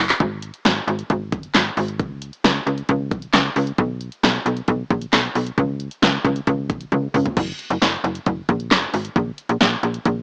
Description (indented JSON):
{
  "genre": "synth-pop",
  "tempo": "134 BPM",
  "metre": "4/4",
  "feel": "straight",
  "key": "F# major",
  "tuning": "A4 = 439 Hz",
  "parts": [
    { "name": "slap-like FM bass", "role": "bass", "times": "0.0-10.2 s", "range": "F#1 to C#2", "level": "-24 LUFS", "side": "equal", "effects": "none" },
    { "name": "deep house drum kit", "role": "drums", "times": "0.1-10.2 s", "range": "crash cymbal, handclaps, hi-hat, kick drum, snare drum, toms", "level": "-22 LUFS", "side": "equal", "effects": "cassette tape" }
  ],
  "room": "moderate spring reverb, RT60 1.3 s",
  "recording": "home recording on cassette, small speaker sound",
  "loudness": "-21 LUFS",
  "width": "mono",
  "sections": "0.0-7.4 A section; 7.4-10.2 B section",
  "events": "drum fill 0.0, 6.9-7.4",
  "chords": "none"
}